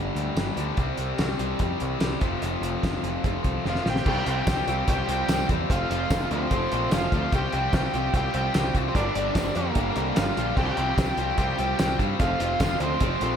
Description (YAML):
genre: classic rock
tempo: 148 BPM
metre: 4/4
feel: straight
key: unclear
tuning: A4 = 440 Hz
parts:
  - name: overdriven electric guitar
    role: riff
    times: 0.0-13.4 s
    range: F2 to G4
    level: -32 LUFS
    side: right 11 dB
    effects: none
  - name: tight distorted guitar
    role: riff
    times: 0.0-13.4 s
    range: F2 to C4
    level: -30 LUFS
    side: left 12 dB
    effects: distortion, slapback echo
  - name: growling picked electric bass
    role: bass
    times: 0.0-13.4 s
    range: F1 to G2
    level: -30 LUFS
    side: equal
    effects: overdrive
  - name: cloth-damped thuddy drum kit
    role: drums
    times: 0.2-13.3 s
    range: crash cymbal, hi-hat, kick drum, snare drum, tambourine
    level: -27 LUFS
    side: equal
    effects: none
  - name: octave-fuzz lead guitar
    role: melody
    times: 3.7-13.4 s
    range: Bb3 to G4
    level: -29 LUFS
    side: left 1 dB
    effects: distortion, slapback echo
  - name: octave-fuzz lead guitar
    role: second line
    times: 3.7-13.4 s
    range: Bb4 to G5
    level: -36 LUFS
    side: right 3 dB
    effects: distortion, slapback echo
  - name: reed electric piano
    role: accompaniment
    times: 4.1-13.4 s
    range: Bb3 to D5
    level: -37 LUFS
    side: right 6 dB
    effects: slapback echo
  - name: tambourine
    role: percussion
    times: 4.5-12.7 s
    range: none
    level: -49 LUFS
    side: left 7 dB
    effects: none
room: moderate scoring stage reverb, RT60 1.9 s, small room ambience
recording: big arena sound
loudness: -22 LUFS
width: side -8 dB against mid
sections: 0.0-4.1 A section; 4.1-13.4 B section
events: drum fill 3.7-4.1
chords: 0.0 Gm; 0.8 C; 2.2 F; 4.1 Csus4; 5.7 F; 7.3 Csus4; 8.9 Gm; 10.6 Csus4; 12.2 F